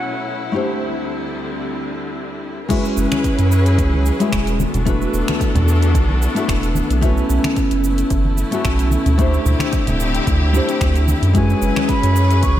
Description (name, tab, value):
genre	sunset chillout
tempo	111 BPM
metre	4/4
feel	swing 54% on 16ths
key	F# minor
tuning	A4 = 438 Hz
part	concert flute	melody	0.0-0.3, 11.3-12.6 s	F#5 to C#6	-25 LUFS	equal	ping-pong delay
part	nylon-string guitar	accompaniment	0.0-12.6 s	G#3 to C5	-21 LUFS	left 1 dB	auto-pan, tape echo
part	clear studio string section	sustained chords	0.0-12.6 s	D2 to B4	-24 LUFS	left 2 dB	none
part	deep house drum kit	drums	2.7-12.5 s	cabasa, crash cymbal, finger snaps, hi-hat	-29 LUFS	right 1 dB	none
part	electronic kick drum	drums	2.7-12.5 s	none	-21 LUFS	equal	none
part	round analog bass	bass	3.0-12.6 s	D1 to F#2	-17 LUFS	equal	tube saturation
part	congas	percussion	3.1-12.6 s	none	-26 LUFS	right 2 dB	none
room	moderate lush hall reverb, RT60 1.8 s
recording	dreamy mix soaked in reverb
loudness	-15 LUFS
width	side -12 dB against mid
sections	0.0-2.7 A section; 2.7-12.6 B section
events	none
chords	0.0 B9sus4; 0.5 D9sus4; 2.7 F#9sus4; 4.6 E9sus4; 7.0 B9sus4; 9.2 D9sus4; 11.4 F#9sus4